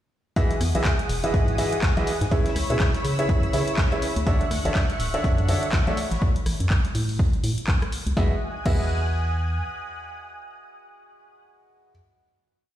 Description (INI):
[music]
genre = piano house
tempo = 123 BPM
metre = 4/4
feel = swing 58% on 16ths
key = E major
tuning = A4 = 438 Hz
[part]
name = analog string pad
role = sustained chords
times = 0.4-11.4 s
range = G#4 to F#6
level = -32 LUFS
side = equal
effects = ensemble chorus, sidechain pumping
[part]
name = clear grand piano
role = riff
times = 0.4-11.9 s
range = C#3 to E5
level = -28 LUFS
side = equal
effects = sidechain pumping, tape echo
[part]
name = dusty soul sampler-style drum kit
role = drums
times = 0.4-6.2 s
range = hi-hat, snare drum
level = -40 LUFS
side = left 1 dB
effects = sidechain pumping on hats, high-pass filter on hats, high-pass filter on snare
[part]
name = electronic kick drum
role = drums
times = 0.4-8.8 s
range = none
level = -23 LUFS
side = equal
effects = overdrive
[part]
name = punchy analog drum machine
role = drums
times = 0.5-8.8 s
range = crash cymbal, handclaps, hi-hat, rim click, snare drum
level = -31 LUFS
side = left 1 dB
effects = overdrive
[part]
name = organ-like FM bass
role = bass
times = 0.6-9.6 s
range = D1 to C#3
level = -25 LUFS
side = equal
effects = tube saturation, sidechain pumping
[sound]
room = light reverb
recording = played on a big sound system in a bare room, stone room reverb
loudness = -21 LUFS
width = side -12 dB against mid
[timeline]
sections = 0.4-8.2 drop; 8.2-12.1 final chord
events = drop 0.4-8.2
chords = 0.4 Emaj9; 2.3 C#m7; 4.3 Dmaj9; 6.0 A69; 8.2 Emaj9